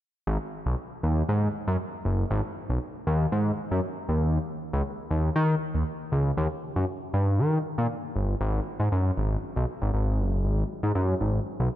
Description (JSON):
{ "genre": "funk", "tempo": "118 BPM", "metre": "4/4", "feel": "straight", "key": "G# minor", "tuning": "A4 = 444 Hz", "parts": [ { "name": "fat analog bass", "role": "solo", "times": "0.3-11.7 s", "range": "F#1 to D#3", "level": "-25 LUFS", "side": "equal", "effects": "none" } ], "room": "moderate plate reverb, RT60 2.6 s", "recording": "dark, warm production", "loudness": "-25 LUFS", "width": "side -13 dB against mid", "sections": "0.3-8.4 A section; 8.4-11.8 B section", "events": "none", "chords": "none" }